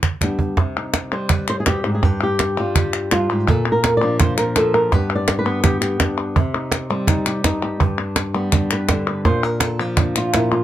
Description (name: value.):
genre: flamenco.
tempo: 166 BPM.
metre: 4/4.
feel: straight.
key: unclear.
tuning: A4 = 441 Hz.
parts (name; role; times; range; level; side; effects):
cajon; percussion; 0.0-10.6 s; none; -19 LUFS; right 2 dB; none.
palmas hand claps; percussion; 0.0-10.6 s; none; -24 LUFS; left 5 dB; none.
flamenco guitar; melody; 0.2-10.6 s; G2 to D5; -19 LUFS; equal; none.
room: light reverb.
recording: close, detailed microphones.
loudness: -16 LUFS.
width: side -12 dB against mid.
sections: 0.6-10.6 A section.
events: drum fill 0.0-0.6.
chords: 0.0 G; 0.6 Cm; 2.0 Fsus2/G; 3.5 Bb; 4.9 G; 6.4 Cm; 7.8 G; 9.3 Bb.